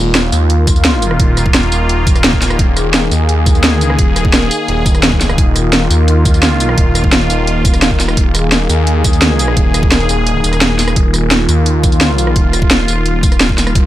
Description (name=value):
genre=dark technical drum and bass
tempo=172 BPM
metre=4/4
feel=straight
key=unclear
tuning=A4 = 440 Hz
part: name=sweeping resonant pad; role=sustained chords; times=0.0-13.9 s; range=Eb3 to Ab4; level=-16 LUFS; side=left 1 dB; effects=chorus, sidechain pumping
part: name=phased detuned saw bass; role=bass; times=0.0-13.9 s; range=Eb1 to Eb2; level=-14 LUFS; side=equal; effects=phaser, sidechain pumping
part: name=drum and bass drum kit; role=drums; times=0.1-13.8 s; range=hi-hat, rim click, snare drum, tambourine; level=-14 LUFS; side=equal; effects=small room reverb
part: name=electronic kick drum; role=drums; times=0.7-13.8 s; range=none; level=-13 LUFS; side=equal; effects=overdrive, small room reverb
room=little or no reverb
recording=none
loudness=-9 LUFS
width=side -14 dB against mid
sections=0.0-13.9 A section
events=kick drops out 10.3-11.0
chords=0.0 Eb5